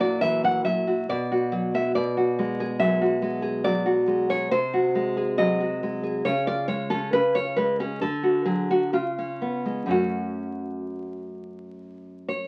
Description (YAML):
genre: romantic piece for solo classical guitar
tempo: 61-71 BPM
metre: 3/4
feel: rubato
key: unclear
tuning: A4 = 438 Hz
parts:
  - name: nylon-string guitar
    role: solo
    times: 0.0-12.5 s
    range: F#2 to F#5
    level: -25 LUFS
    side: equal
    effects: none
room: wet studio reverb, RT60 0.5 s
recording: very old 78 rpm record, vinyl crackle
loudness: -25 LUFS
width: mono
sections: 0.0-12.5 A section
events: none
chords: 0.0 F#7/A#; 1.1 Bm; 2.0 G#m7b5/B; 4.5 G#7/B#; 6.3 C#; 8.0 D; 8.9 C#7; 9.9 F#m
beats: 0.22 1.09 | 1.96 2.82 3.67 | 4.54 5.41 6.29 | 7.16 8.04 8.95 | 9.90 10.86 11.81